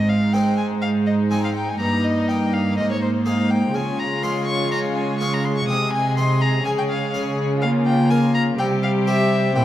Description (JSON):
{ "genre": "classical, baroque-style concerto movement with solo episodes", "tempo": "124 BPM", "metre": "4/4", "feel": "straight", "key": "Ab major", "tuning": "A4 = 441 Hz", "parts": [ { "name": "rich violin", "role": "melody", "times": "0.0-9.6 s", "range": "C5 to Eb6", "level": "-25 LUFS", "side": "left 2 dB", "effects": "none" }, { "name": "warm chamber violin section", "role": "melody", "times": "0.0-9.6 s", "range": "Bb4 to Eb5", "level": "-34 LUFS", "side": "left 6 dB", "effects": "none" }, { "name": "rich chamber violin section", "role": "second line", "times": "0.0-9.6 s", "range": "Eb4 to Ab4", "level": "-28 LUFS", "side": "left 4 dB", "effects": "none" }, { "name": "harpsichord", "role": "accompaniment", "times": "0.0-9.6 s", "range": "G2 to C5", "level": "-31 LUFS", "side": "equal", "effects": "none" }, { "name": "warm chamber viola section", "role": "accompaniment", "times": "0.0-9.6 s", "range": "G3 to C4", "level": "-23 LUFS", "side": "right 1 dB", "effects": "none" }, { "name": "warm chamber cello section", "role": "bass", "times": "0.0-9.6 s", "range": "G2 to Db3", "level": "-22 LUFS", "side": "right 2 dB", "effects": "none" } ], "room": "wet recital hall reverb, RT60 1.3 s", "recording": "dark, warm production", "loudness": "-18 LUFS", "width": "side -12 dB against mid", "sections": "0.0-9.6 A section", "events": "none", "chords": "0.0 Ab; 1.8 Eb/G; 2.8 Ab; 3.7 Db; 5.7 Ab/C; 6.7 Db5; 7.6 Bbm/Db; 8.6 C" }